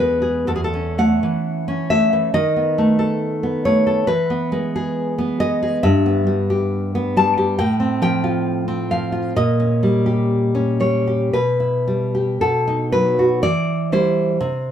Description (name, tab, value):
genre	romantic piece for solo classical guitar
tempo	56-70 BPM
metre	2/4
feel	rubato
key	E major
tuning	A4 = 440 Hz
part	nylon-string guitar	solo	0.0-14.7 s	E2 to A5	-16 LUFS	equal	none
room	moderate studio reverb, RT60 0.8 s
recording	band playing live in one room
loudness	-16 LUFS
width	side -9 dB against mid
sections	0.0-13.4 A section; 13.4-14.7 B section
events	none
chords	0.5 F#m7/E; 2.4 B7/D#; 4.1 E; 5.8 Em/G; 7.6 F/A; 9.4 D#7/A#; 11.3 Em/B; 12.4 B; 13.4 Em